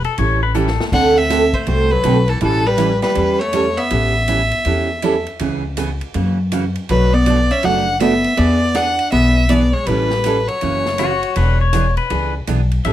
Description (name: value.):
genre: country, western swing.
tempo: 161 BPM.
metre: 4/4.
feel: swing 65% on 8ths.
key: A mixolydian.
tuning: A4 = 440 Hz.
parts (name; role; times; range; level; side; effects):
pedal steel guitar; second line; 0.0-0.8, 11.0-12.9 s; F#4 to E5; -21 LUFS; left 6 dB; none.
upright bass; bass; 0.0-12.9 s; E1 to F#2; -19 LUFS; left 1 dB; none.
swinging big-band drum kit; drums; 0.0-12.9 s; crash cymbal, hi-hat, kick drum, ride cymbal, snare drum; -30 LUFS; equal; none.
picked steel-string acoustic guitar; accompaniment; 0.2-12.9 s; B2 to A4; -20 LUFS; right 4 dB; none.
clear fiddle; melody; 0.9-11.6 s; A4 to F#5; -19 LUFS; left 1 dB; none.
hollow-body jazz guitar; second line; 0.9-11.6 s; E3 to D4; -20 LUFS; equal; none.
room: light reverb.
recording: none.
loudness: -14 LUFS.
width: side -12 dB against mid.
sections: 0.0-12.9 A section.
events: drum fill 0.6-0.9.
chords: 0.2 A7; 0.9 D9; 2.4 A9; 5.4 C#m7; 6.1 F#7; 6.9 Bm7; 8.4 E9; 9.9 A9; 10.6 F#7; 11.4 E7.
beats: 0.18 0.55 | 0.92 1.30 1.67 2.04 | 2.42 2.79 3.16 3.53 | 3.91 4.28 4.65 5.02 | 5.40 5.77 6.14 6.51 | 6.89 7.26 7.63 8.01 | 8.38 8.75 9.12 9.50 | 9.87 10.24 10.62 10.99 | 11.36 11.73 12.11 12.48 | 12.85.